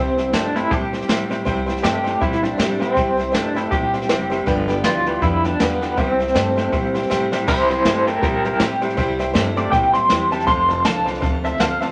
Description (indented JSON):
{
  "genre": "rockabilly",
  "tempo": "160 BPM",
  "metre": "4/4",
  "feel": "swing 59% on 8ths",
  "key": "C major",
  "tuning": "A4 = 440 Hz",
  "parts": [
    { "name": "electric guitar through a small old amp", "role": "melody", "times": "0.0-11.9 s", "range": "B3 to C6", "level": "-22 LUFS", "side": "equal", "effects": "tremolo" },
    { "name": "picked steel-string acoustic guitar", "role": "accompaniment", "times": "0.0-11.9 s", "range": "G2 to A4", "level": "-30 LUFS", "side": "equal", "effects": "none" },
    { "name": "tack piano", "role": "accompaniment", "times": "0.0-11.9 s", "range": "B4 to A5", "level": "-28 LUFS", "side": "equal", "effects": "none" },
    { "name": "electric guitar through a small old amp", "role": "riff", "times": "0.0-11.9 s", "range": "F2 to A3", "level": "-28 LUFS", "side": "equal", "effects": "tremolo" },
    { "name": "upright bass", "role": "bass", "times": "0.0-11.9 s", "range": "F1 to Bb2", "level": "-31 LUFS", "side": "equal", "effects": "none" },
    { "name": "jazz brush drum kit", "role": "drums", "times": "0.2-11.9 s", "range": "crash cymbal, hi-hat, kick drum, snare drum", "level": "-26 LUFS", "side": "equal", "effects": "none" }
  ],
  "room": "moderate studio reverb, RT60 0.6 s",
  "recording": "faint mains hum",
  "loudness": "-19 LUFS",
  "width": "mono",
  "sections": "0.0-7.5 A section; 7.5-11.9 B section",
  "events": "drum fill 7.1-7.5; clean electric guitar solo 7.5-11.9",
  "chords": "0.0 C; 4.5 G7; 6.0 C; 10.5 F"
}